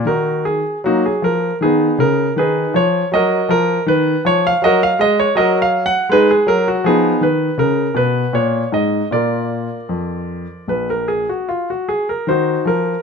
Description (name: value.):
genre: classical, baroque-style suite movement for grand piano.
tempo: 78 BPM.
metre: 4/4.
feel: rubato.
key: Eb minor.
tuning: A4 = 440 Hz.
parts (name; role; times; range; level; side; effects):
clear baby grand piano; solo; 0.0-13.0 s; Bb1 to Gb5; -14 LUFS; equal; none.
room: moderate stone room reverb, RT60 1.1 s.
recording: close, detailed microphones.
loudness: -14 LUFS.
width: side -5 dB against mid.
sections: 0.0-13.0 A section.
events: none.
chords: 0.0 Ebm; 1.6 Abm; 3.1 Ebm; 6.1 Abm; 9.1 Bb; 12.3 Ab13/Eb (rootless).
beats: | 0.03 0.82 1.59 2.35 | 3.11 3.87 4.62 5.36 | 6.09 6.84 7.59 8.34 | 9.12 9.90 10.68 11.47 | 12.27.